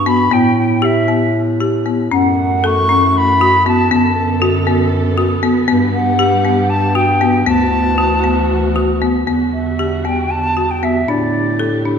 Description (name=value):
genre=contemporary instrumental, chamber music in an uneven meter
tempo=234 BPM (eighths)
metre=7/8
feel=straight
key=A mixolydian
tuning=A4 = 440 Hz
part: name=concert flute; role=melody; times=0.0-11.9 s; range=D5 to C#6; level=-17 LUFS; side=equal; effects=none
part: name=mellow bass clarinet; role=bass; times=0.0-12.0 s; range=D2 to A2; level=-18 LUFS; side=left 1 dB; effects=none
part: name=folk marimba with hard mallets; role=arpeggios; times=0.1-12.0 s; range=B3 to A4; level=-16 LUFS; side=left 1 dB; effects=none
part: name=warm studio string section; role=sustained chords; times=2.1-12.0 s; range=D3 to A4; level=-24 LUFS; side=right 2 dB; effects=none
room=wet concert hall reverb, RT60 1.9 s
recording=none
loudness=-12 LUFS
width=side -7 dB against mid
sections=0.0-9.3 A section; 9.3-12.0 B section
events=none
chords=0.3 Asus2; 2.1 F#m7; 3.9 Bm7/F#; 5.7 Gmaj7; 7.5 D69; 9.3 Em9; 11.1 A7sus4